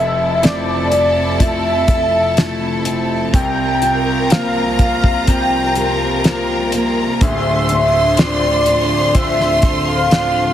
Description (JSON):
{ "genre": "pop ballad", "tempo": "62 BPM", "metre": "4/4", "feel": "straight", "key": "F major", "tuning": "A4 = 441 Hz", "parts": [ { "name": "warm velvety synth lead", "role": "melody", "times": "0.0-10.5 s", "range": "D5 to G5", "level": "-17 LUFS", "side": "equal", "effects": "chorus" }, { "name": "warm studio violin section", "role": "second line", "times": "0.0-10.5 s", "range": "A5 to C6", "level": "-23 LUFS", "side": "left 1 dB", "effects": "none" }, { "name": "clear concert grand piano", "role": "accompaniment", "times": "0.0-10.5 s", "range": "D1 to E4", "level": "-21 LUFS", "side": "left 3 dB", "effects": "none" }, { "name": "clear studio string section", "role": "sustained chords", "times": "0.0-10.5 s", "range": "C2 to C5", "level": "-22 LUFS", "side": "equal", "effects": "none" }, { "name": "picked steel-string acoustic guitar", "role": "arpeggios", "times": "0.0-10.5 s", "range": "C3 to A4", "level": "-24 LUFS", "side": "right 6 dB", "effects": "none" }, { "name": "damped 70s drum kit", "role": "drums", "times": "0.4-10.3 s", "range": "hi-hat, kick drum, snare drum", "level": "-15 LUFS", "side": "equal", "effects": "none" } ], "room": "light reverb, small room ambience", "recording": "heavily compressed radio sound", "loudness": "-13 LUFS", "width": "side -11 dB against mid", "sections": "0.0-10.5 A section", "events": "none", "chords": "0.0 Fmaj7; 3.3 C7sus4; 7.2 Dm7" }